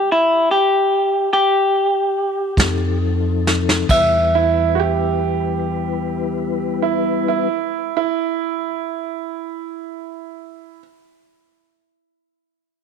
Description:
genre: slow blues.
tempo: 44-51 BPM (dotted quarters).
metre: 12/8.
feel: straight.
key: E harmonic minor.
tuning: A4 = 441 Hz.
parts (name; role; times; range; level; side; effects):
electric guitar through a small old amp; melody; 0.0-7.5 s; E4 to E5; -16 LUFS; equal; none.
mellow tonewheel organ; sustained chords; 2.6-7.5 s; F3 to B4; -24 LUFS; left 14 dB; slow rotary speaker, chorus vibrato.
upright bass; bass; 2.6-7.5 s; E2 to F2; -22 LUFS; equal; none.
vintage brush drum kit; drums; 2.6-4.1 s; crash cymbal, hi-hat, kick drum, snare drum; -19 LUFS; right 1 dB; none.
bright upright piano; second line; 4.4-10.8 s; E4 to G4; -21 LUFS; right 14 dB; none.
room: light reverb, small room ambience.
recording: 1960s-style stereo with parts hard left and right.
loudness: -16 LUFS.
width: side -6 dB against mid.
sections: 0.0-3.9 A section; 3.9-9.3 B section.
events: slowing down 0.0-3.9; stop 0.0-2.6; drum fill 3.4-3.9.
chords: 0.0 N.C.; 2.6 F7; 3.9 Em.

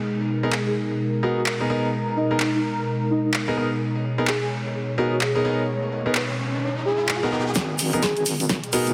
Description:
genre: bass house.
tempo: 128 BPM.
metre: 4/4.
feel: swing 60% on 16ths.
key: G# minor.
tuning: A4 = 440 Hz.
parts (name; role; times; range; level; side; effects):
sweeping resonant pad; sustained chords; 0.0-8.9 s; B2 to C#5; -29 LUFS; equal; lush chorus, sidechain pumping.
clear concert grand piano; stabs; 0.4-8.9 s; B3 to A#4; -29 LUFS; equal; sidechain pumping, low-pass filter, digital delay.
breathy flute-like synth lead; melody; 0.5-8.9 s; D#4 to B4; -30 LUFS; equal; analog chorus, cassette tape, digital delay.
house drum kit; drums; 0.5-8.9 s; handclaps, hi-hat, snare drum; -30 LUFS; equal; none.
riser; sound effects; 5.6-8.9 s; none; -35 LUFS; equal; none.
egg shaker; percussion; 7.5-8.9 s; none; -32 LUFS; equal; none.
wobble bass; bass; 7.6-8.9 s; F#1 to G#1; -29 LUFS; equal; chorus, overdrive, sidechain pumping, high-pass filter.
electronic kick drum; drums; 7.6-8.6 s; none; -31 LUFS; equal; high-pass filter on kick.
room: moderate lush hall reverb, RT60 2.5 s.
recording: heavily compressed radio sound, multiband compression.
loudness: -23 LUFS.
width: mono.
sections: 0.0-7.6 A section; 7.6-8.9 B section.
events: riser 5.6-7.6; build-up 7.6-8.9; drum fill 7.6-8.9; filter sweep on analog synth pad 7.6-8.9.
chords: 0.0 G#madd9.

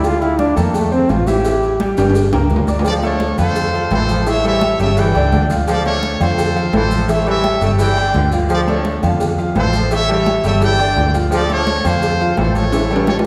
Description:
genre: latin, salsa.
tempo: 170 BPM.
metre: 4/4.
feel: straight.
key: D minor.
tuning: A4 = 439 Hz.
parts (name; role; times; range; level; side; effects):
clear trombone; melody; 0.0-1.8 s; A3 to G4; -20 LUFS; equal; none.
bright grand piano; accompaniment; 0.0-13.2 s; D3 to F6; -22 LUFS; equal; none.
vintage muted fingered electric bass; bass; 0.0-13.2 s; G1 to F2; -21 LUFS; equal; none.
agogo bells and timbales; percussion; 0.0-13.3 s; none; -27 LUFS; equal; none.
congas; percussion; 0.0-13.3 s; none; -28 LUFS; equal; none.
cowbell; percussion; 0.0-13.3 s; none; -28 LUFS; equal; none.
maracas; percussion; 0.0-13.3 s; none; -40 LUFS; equal; none.
bright trumpet section; melody; 2.9-13.2 s; A4 to G5; -22 LUFS; equal; none.
clear trombone section; second line; 2.9-13.1 s; C#3 to F3; -26 LUFS; equal; none.
room: wet concert hall reverb, RT60 1.9 s.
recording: recorded in a church or concert hall.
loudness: -16 LUFS.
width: mono.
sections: 0.0-2.9 A section; 2.9-13.3 B section.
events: trombone solo 0.0-2.9; drum fill 2.0-2.9, 12.7-13.3.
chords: 0.0 Dm; 0.7 F; 1.4 A5; 2.2 Gm; 2.9 Dm; 3.6 F; 4.3 A7; 5.0 Gsus2; 5.7 Dm; 6.4 F; 7.1 A7; 7.8 Gsus2; 8.5 Dm; 9.2 F; 9.9 A7; 10.6 Gsus2; 11.3 Dm; 12.0 F; 12.7 A7.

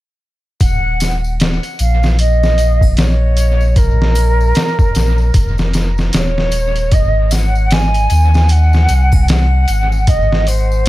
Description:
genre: trip hop.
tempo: 76 BPM.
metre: 4/4.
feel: swing 60% on 16ths.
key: Eb dorian.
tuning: A4 = 439 Hz.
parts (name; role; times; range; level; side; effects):
mellow concert flute; melody; 0.6-10.9 s; Bb4 to Ab5; -19 LUFS; right 1 dB; dub echo.
warm sub bass; bass; 0.6-10.9 s; Eb1 to Eb2; -13 LUFS; equal; none.
trip hop sampler-style drum kit; drums; 0.6-10.9 s; hi-hat, kick drum, snare drum; -15 LUFS; equal; dub echo.
tambourine and triangle; percussion; 0.6-10.8 s; none; -32 LUFS; left 5 dB; dub echo.
room: studio ambience.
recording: echo-heavy mix.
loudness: -11 LUFS.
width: side -16 dB against mid.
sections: 0.6-10.9 A section.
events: none.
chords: 0.6 Eb7(no3); 6.9 Ab7.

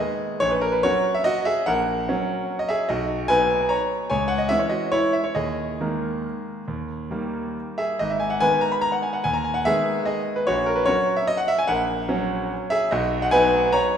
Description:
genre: classical, piano waltz.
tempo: 134-156 BPM.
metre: 3/4.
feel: rubato.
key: unclear.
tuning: A4 = 440 Hz.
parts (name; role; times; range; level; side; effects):
clear concert grand piano; solo; 0.0-14.0 s; G#1 to B5; -20 LUFS; equal; none.
room: wet scoring stage reverb, RT60 1.9 s.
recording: recorded in a church or concert hall.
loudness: -20 LUFS.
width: side -8 dB against mid.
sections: 0.0-14.0 A section.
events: none.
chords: 0.4 F#/A#; 2.9 B; 4.1 C#m; 5.4 D#sus4; 6.7 D#; 8.0 G#m; 10.5 F#/A#; 12.9 B.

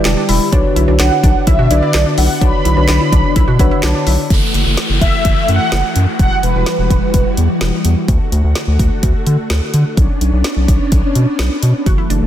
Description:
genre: synth-pop.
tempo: 127 BPM.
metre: 4/4.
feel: straight.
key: B minor.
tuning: A4 = 443 Hz.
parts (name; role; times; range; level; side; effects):
muted felt-like synth keys; accompaniment; 0.0-4.3 s; D4 to B5; -19 LUFS; left 2 dB; chorus.
ensemble organ-string; sustained chords; 0.0-12.3 s; D3 to F#4; -20 LUFS; equal; ensemble chorus.
resonant blip pluck; arpeggios; 0.0-4.3, 11.9-12.3 s; D4 to F#4; -24 LUFS; equal; phaser, digital delay.
round analog bass; bass; 0.1-12.3 s; E1 to D3; -14 LUFS; equal; none.
deep house drum kit; drums; 0.1-12.2 s; handclaps, hi-hat, kick drum, snare drum; -16 LUFS; equal; none.
mellow synth brass; melody; 1.0-7.3 s; B4 to B5; -19 LUFS; right 1 dB; chorus, phaser, digital delay.
downlifter; sound effects; 4.3-8.1 s; none; -24 LUFS; left 1 dB; none.
room: light reverb, digital ambience.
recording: dense, heavily limited modern master.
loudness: -11 LUFS.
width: side -11 dB against mid.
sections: 0.0-4.3 A section; 4.3-12.3 B section.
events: synth keys fill 0.0-0.5, 3.4-4.3.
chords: 0.0 Em7; 0.5 Bmadd9; 4.3 F#m7; 6.2 Emadd9; 8.1 D; 10.0 Bmadd9.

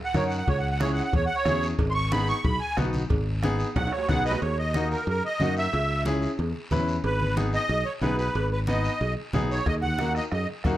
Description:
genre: latin, cumbia.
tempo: 183 BPM.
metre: 4/4.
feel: straight.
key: G# minor.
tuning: A4 = 440 Hz.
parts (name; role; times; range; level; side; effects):
musette accordion; melody; 0.0-10.5 s; A#4 to C#6; -28 LUFS; right 2 dB; none.
bright upright piano; accompaniment; 0.1-10.8 s; A#3 to B4; -30 LUFS; left 2 dB; none.
modern bright fingered electric bass; bass; 0.1-10.8 s; G#1 to F#2; -28 LUFS; equal; none.
bombo; percussion; 0.1-4.3, 9.7-10.8 s; none; -30 LUFS; left 1 dB; none.
congas; percussion; 0.1-10.8 s; none; -32 LUFS; equal; none.
guiro; percussion; 0.1-10.8 s; none; -42 LUFS; left 1 dB; none.
cowbell and timbales; percussion; 0.2-10.8 s; none; -37 LUFS; right 6 dB; none.
room: light reverb.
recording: dark, warm production.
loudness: -23 LUFS.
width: side -14 dB against mid.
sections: 0.0-4.4 A section; 4.4-10.8 B section.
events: accordion solo 0.0-4.4; drum fill 3.8-4.4.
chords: 0.5 C#m; 1.8 G#m; 4.4 D#m; 5.7 C#m; 7.0 G#m; 9.7 D#m.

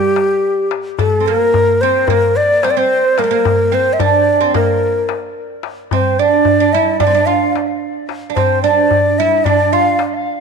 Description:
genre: Turkish makam ensemble.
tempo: 220 BPM (eighths).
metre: 9/8.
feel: straight.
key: unclear.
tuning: A4 = 439 Hz.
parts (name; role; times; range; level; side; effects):
breathy bright ney; melody; 0.0-10.0 s; G4 to F5; -14 LUFS; left 1 dB; tape echo.
oud; second line; 0.0-10.0 s; G3 to F4; -17 LUFS; right 10 dB; none.
darbuka; percussion; 0.2-10.1 s; none; -20 LUFS; left 6 dB; none.
room: moderate echo chamber reverb, RT60 1.5 s, small room reverb.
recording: 1960s-style stereo with parts hard left and right.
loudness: -11 LUFS.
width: side -5 dB against mid.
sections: 0.0-10.4 A section.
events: none.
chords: none.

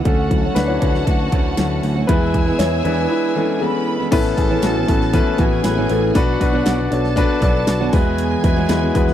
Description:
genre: piano-driven pop.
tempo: 118 BPM.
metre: 4/4.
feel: straight.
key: A major.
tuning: A4 = 439 Hz.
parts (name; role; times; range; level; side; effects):
dark concert grand piano; accompaniment; 0.0-9.1 s; A2 to D5; -19 LUFS; left 5 dB; none.
warm studio string section; sustained chords; 0.0-4.1 s; C#4 to E6; -31 LUFS; left 2 dB; none.
fingerpicked steel-string acoustic guitar; riff; 0.0-9.1 s; E2 to F#4; -24 LUFS; right 9 dB; none.
warm symphonic violin section; second line; 0.1-9.1 s; F#4 to B5; -27 LUFS; right 2 dB; none.
picked electric bass; bass; 0.1-9.1 s; A1 to E2; -22 LUFS; right 1 dB; none.
pop drum kit; drums; 0.1-9.1 s; crash cymbal, hi-hat, kick drum, snare drum; -19 LUFS; equal; none.
room: little or no reverb.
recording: dry, close 1970s-style studio recording.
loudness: -15 LUFS.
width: side -11 dB against mid.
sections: 0.0-4.1 A section; 4.1-9.1 B section.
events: grand piano solo 0.0-4.1; break 3.1-4.1.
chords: 0.1 Dmaj7; 2.1 E; 4.1 Aadd9; 6.2 Bm; 7.9 Eadd9.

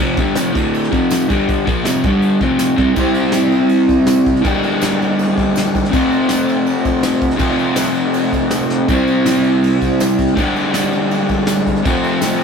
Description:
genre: garage rock duo or trio.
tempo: 162 BPM.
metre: 4/4.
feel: straight.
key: unclear.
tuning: A4 = 440 Hz.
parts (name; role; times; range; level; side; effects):
crunchy overdriven guitar; riff; 0.0-12.4 s; D2 to C5; -14 LUFS; equal; none.
soft brush drum kit; drums; 0.2-12.4 s; crash cymbal, kick drum, ride cymbal, snare drum; -22 LUFS; equal; none.
tambourine; percussion; 0.4-12.3 s; none; -30 LUFS; right 4 dB; none.
room: light reverb.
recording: rough rehearsal-room recording, tube saturation.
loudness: -13 LUFS.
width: side -6 dB against mid.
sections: 0.0-3.0 A section; 3.0-12.4 B section.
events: drum fill 8.7.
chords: 0.0 F5; 0.6 D5; 0.9 F5; 1.3 G5; 1.7 F5; 2.0 G5; 2.4 F5; 3.0 C; 4.4 Gm; 5.9 F; 8.9 C; 10.4 Gm; 11.9 F.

